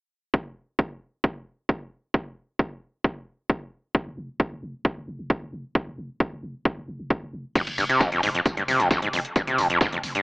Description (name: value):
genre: driving peak-time techno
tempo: 133 BPM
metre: 4/4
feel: straight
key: F minor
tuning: A4 = 440 Hz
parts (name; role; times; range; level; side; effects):
- electronic kick drum; drums; 0.3-9.9 s; none; -24 LUFS; equal; none
- growling 808-style bass; bass; 4.1-10.1 s; F1; -40 LUFS; equal; tube saturation, sidechain pumping, low-pass filter
- screaming distorted acid line; riff; 7.6-10.2 s; F2 to C3; -24 LUFS; equal; distortion, chorus, cassette tape, sidechain pumping, tape echo
- dusty soul sampler-style drum kit; drums; 7.6-10.1 s; hi-hat, snare drum, tambourine; -33 LUFS; equal; high-pass filter on perc, high-pass filter on hats, high-pass filter on snare
- techno drum kit; drums; 7.6-10.2 s; crash cymbal, hi-hat; -36 LUFS; equal; sidechain pumping on hats, sidechain pumping on cymbals
room: digital ambience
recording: dry, gritty hardware recording, AM radio sound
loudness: -24 LUFS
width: side -31 dB against mid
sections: 0.3-7.6 A section; 7.6-10.2 B section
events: none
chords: 0.3 N.C.; 7.6 F5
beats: | 0.34 0.79 1.24 1.69 | 2.14 2.59 3.04 3.50 | 3.95 4.40 4.85 5.30 | 5.75 6.20 6.65 7.10 | 7.55 8.01 8.46 8.91 | 9.36 9.81